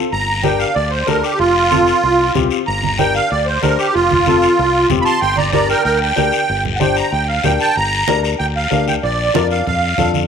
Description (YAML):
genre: latin, cumbia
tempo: 189 BPM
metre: 4/4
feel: straight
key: G minor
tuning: A4 = 440 Hz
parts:
  - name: dark upright piano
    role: accompaniment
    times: 0.0-10.2 s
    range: C4 to C5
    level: -20 LUFS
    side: left 9 dB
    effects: none
  - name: musette accordion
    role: melody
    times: 0.1-10.1 s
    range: F4 to C6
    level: -15 LUFS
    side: right 3 dB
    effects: none
  - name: fingered electric bass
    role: bass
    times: 0.1-10.2 s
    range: F1 to F2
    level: -22 LUFS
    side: left 1 dB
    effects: none
  - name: guiro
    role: percussion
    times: 0.1-10.3 s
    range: none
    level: -25 LUFS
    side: left 11 dB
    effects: none
  - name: congas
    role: percussion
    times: 0.4-10.3 s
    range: none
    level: -23 LUFS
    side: right 7 dB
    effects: none
room: wet echo chamber reverb, RT60 1.5 s, small room reverb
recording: 1960s-style stereo with parts hard left and right, faint mains hum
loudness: -13 LUFS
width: side -7 dB against mid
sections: 0.0-7.8 A section; 7.8-10.3 B section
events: accordion solo 0.0-7.8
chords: 0.1 Gm; 1.4 F; 2.7 Gm; 3.9 F; 5.2 Gm; 9.0 Bb